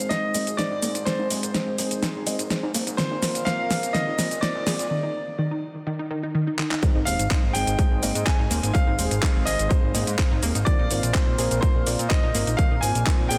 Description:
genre	progressive house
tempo	125 BPM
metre	4/4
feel	straight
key	unclear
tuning	A4 = 440 Hz
part	bright baby grand piano	melody	0.0-13.4 s	C5 to Ab5	-31 LUFS	equal	sidechain pumping, delay
part	warm analog pad	sustained chords	0.0-13.4 s	Ab3 to F5	-37 LUFS	equal	chorus, sidechain pumping
part	felt-muted upright piano	stabs	0.0-13.4 s	Ab3 to Eb5	-34 LUFS	equal	sidechain pumping, low-pass filter, digital delay
part	fat analog bass	bass	0.0-13.4 s	Eb1 to Bb2	-31 LUFS	equal	sidechain pumping, high-pass filter
part	pop drum kit	drums	0.0-13.4 s	handclaps, hi-hat, shaker, snare drum	-30 LUFS	equal	soft clipping on snare, studio reverb
part	unison pluck	arpeggios	0.1-13.4 s	Eb3 to Ab4	-34 LUFS	equal	sidechain pumping, digital delay
part	electronic kick drum	drums	6.8-13.2 s	none	-24 LUFS	equal	overdrive, studio reverb
room	moderate lush hall reverb, RT60 2.0 s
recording	dense, heavily limited modern master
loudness	-23 LUFS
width	mono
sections	0.0-6.8 A section; 6.8-13.4 B section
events	build-up 0.0-6.8; drum fill 0.0-4.9, 6.6; filter sweep on synth pluck 0.0-6.8; filter sweep on felt piano 0.0-6.8; break 4.9-6.8; drop 6.8-13.4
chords	0.0 Ab; 3.0 Bbsus2; 6.8 Ab; 10.7 Bbsus2

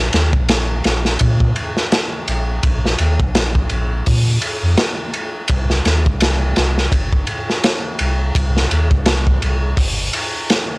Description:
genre	trip hop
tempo	84 BPM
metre	4/4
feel	swing 57% on 16ths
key	C minor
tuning	A4 = 440 Hz
part	soft dub sub bass	bass	0.0-10.1 s	G1 to Bb2	-17 LUFS	equal	none
part	crunchy breakbeat drum kit	drums	0.1-10.7 s	hi-hat, kick drum, ride cymbal, snare drum	-16 LUFS	equal	cassette tape
room	little or no reverb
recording	home recording on cassette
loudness	-14 LUFS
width	side -31 dB against mid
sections	0.0-10.8 A section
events	none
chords	none

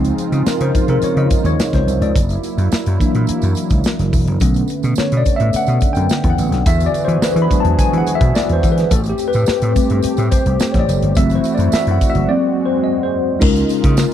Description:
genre	polished 1980s jazz-funk pop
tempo	106 BPM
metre	4/4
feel	straight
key	unclear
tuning	A4 = 441 Hz
part	tine electric piano	accompaniment	0.0-14.1 s	D3 to B5	-18 LUFS	left 2 dB	medium stereo tremolo, lush chorus
part	warm analog pad	sustained chords	0.0-14.1 s	C#3 to G#4	-23 LUFS	right 1 dB	chorus
part	vintage slap bass	bass	0.0-14.0 s	E1 to E3	-17 LUFS	equal	none
part	modern studio drum kit	drums	0.0-14.1 s	crash cymbal, hi-hat, kick drum, snare drum	-18 LUFS	equal	none
part	tambourine	percussion	0.0-14.1 s	none	-35 LUFS	right 17 dB	none
room	little or no reverb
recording	dry, close 1970s-style studio recording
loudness	-13 LUFS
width	side -10 dB against mid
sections	0.0-13.4 A section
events	tine electric piano solo 0.0-13.4; break 12.3-13.4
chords	0.0 C#maj7; 2.2 F#7b13; 4.4 Bm9; 6.7 E7; 8.9 Am9; 11.2 F#m7b5; 12.3 G#9; 13.4 C#69

